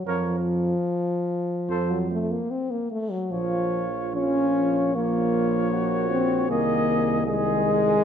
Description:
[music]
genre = classical, brass quintet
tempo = 71-78 BPM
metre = 4/4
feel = rubato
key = Bb minor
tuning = A4 = 440 Hz
[part]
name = dark French horn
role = accompaniment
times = 0.0-8.0 s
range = F3 to Db4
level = -24 LUFS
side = left 2 dB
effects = none
[part]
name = warm trumpet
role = melody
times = 0.1-8.0 s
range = C5 to Eb5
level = -31 LUFS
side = left 8 dB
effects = none
[part]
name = warm flugelhorn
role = second line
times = 0.1-8.0 s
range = F4 to Bb4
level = -31 LUFS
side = right 8 dB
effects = none
[part]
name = mellow trombone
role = accompaniment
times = 0.1-8.0 s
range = Eb3 to F3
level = -32 LUFS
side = right 5 dB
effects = none
[part]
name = warm tuba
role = bass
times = 0.1-8.0 s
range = Bb1 to F2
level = -29 LUFS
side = right 4 dB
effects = none
[sound]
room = moderate scoring stage reverb, RT60 1.6 s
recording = dark, warm production, nothing above 10.3 kHz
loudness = -22 LUFS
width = side -8 dB against mid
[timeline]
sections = 0.0-8.0 A section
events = none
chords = 0.1 N.C.; 1.7 F; 3.3 Bbm; 6.5 Ab/C

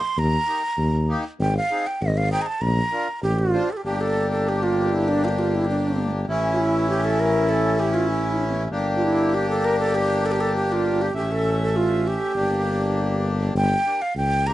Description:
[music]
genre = klezmer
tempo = 99 BPM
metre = 2/4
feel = straight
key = Bb major, G dorian sharp4 from 3.8 s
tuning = A4 = 440 Hz
[part]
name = breathy mellow silver concert flute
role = melody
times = 0.0-14.5 s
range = D4 to C6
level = -23 LUFS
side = right 2 dB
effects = none
[part]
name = mellow tuba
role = bass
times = 0.2-14.5 s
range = G1 to Eb2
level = -24 LUFS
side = equal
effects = none
[part]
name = accordion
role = accompaniment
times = 0.5-14.5 s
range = E3 to E5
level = -25 LUFS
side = left 1 dB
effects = none
[sound]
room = light reverb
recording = dark, warm production, nothing above 10.7 kHz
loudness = -20 LUFS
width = side -14 dB against mid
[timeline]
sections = 0.0-3.8 A section; 3.8-13.6 B section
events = none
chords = 0.0 Eb; 1.4 Ab; 2.6 Bb; 3.8 Gm; 6.3 A; 8.7 Gm; 11.1 A; 12.4 Gm

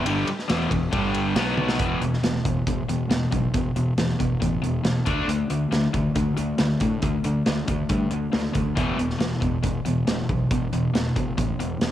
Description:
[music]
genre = hard rock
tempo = 138 BPM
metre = 4/4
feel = straight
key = unclear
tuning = A4 = 441 Hz
[part]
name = cranked stack guitar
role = riff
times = 0.0-11.9 s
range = E2 to D4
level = -26 LUFS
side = left 5 dB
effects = overdrive, cassette tape
[part]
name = crunchy overdriven guitar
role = riff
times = 0.0-11.9 s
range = E2 to D4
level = -28 LUFS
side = right 6 dB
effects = cassette tape
[part]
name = fuzz fingered electric bass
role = bass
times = 0.0-11.9 s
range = E1 to A2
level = -28 LUFS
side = equal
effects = overdrive
[part]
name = big rock drum kit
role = drums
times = 0.1-11.9 s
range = hi-hat, kick drum, ride cymbal, snare drum, toms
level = -27 LUFS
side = equal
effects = cassette tape
[sound]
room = small room ambience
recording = home recording on cassette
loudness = -21 LUFS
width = side -12 dB against mid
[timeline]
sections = 0.0-1.8 A section; 1.8-11.9 B section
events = drum fill 1.6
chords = 0.0 Em; 0.9 G5; 1.4 B5; 1.8 E5; 5.1 D5; 8.8 E5

